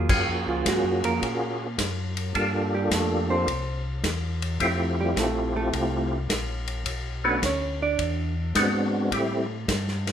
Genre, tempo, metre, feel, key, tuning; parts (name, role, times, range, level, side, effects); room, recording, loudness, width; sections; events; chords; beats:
soul jazz organ trio; 106 BPM; 4/4; swing 67% on 8ths; A4 = 439 Hz
hollow-body jazz guitar; accompaniment; 0.0-8.3 s; F3 to D5; -28 LUFS; right 3 dB
mellow tonewheel organ; bass; 0.0-10.1 s; Bb1 to Bb2; -30 LUFS; left 1 dB; slow rotary speaker
percussive tonewheel organ; melody; 0.1-9.5 s; G3 to A4; -25 LUFS; equal; slow rotary speaker, chorus vibrato
warm soul drum kit; drums; 0.1-10.1 s; crash cymbal, hi-hat, kick drum, ride cymbal, snare drum; -30 LUFS; left 1 dB
light reverb; minimal, uncompressed stereo recording; -23 LUFS; side -9 dB against mid
0.1-10.1 A section
hollow-body jazz guitar solo 0.1-10.1
0.1 Gbmaj9; 2.4 Gm9; 3.5 C; 4.6 Fmaj9; 6.9 Bm7; 8.0 E7b13; 9.1 Am7
| 0.10 0.66 1.22 1.79 | 2.35 2.92 3.48 4.04 | 4.61 5.17 5.73 6.30 | 6.86 7.42 7.99 8.55 | 9.12 9.68